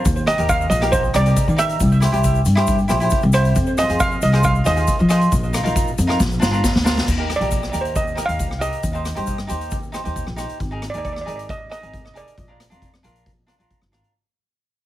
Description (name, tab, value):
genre	calypso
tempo	136 BPM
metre	4/4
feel	straight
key	unclear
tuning	A4 = 443 Hz
part	steel pan	melody	0.0-13.7 s	C5 to F5	-22 LUFS	right 2 dB	plate reverb, tape echo
part	cavaquinho	accompaniment	0.0-14.1 s	D4 to C5	-24 LUFS	right 1 dB	none
part	upright bass	bass	0.0-14.0 s	F1 to F3	-20 LUFS	left 1 dB	none
part	street-band drum kit	drums	0.1-14.1 s	crash cymbal, hi-hat, kick drum, rim click, snare drum	-23 LUFS	equal	none
part	tube shaker	percussion	0.1-10.5 s	none	-34 LUFS	left 6 dB	none
room	light reverb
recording	heavily compressed radio sound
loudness	-16 LUFS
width	side -14 dB against mid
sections	0.0-7.1 A section; 7.1-14.1 B section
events	drum fill 6.2-7.1; fade-out 7.1-14.1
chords	0.0 Eb; 1.8 C; 3.6 Fm7; 5.3 Bbsus4; 6.2 Bb; 7.1 Cm7; 10.6 Absus2; 12.4 Bb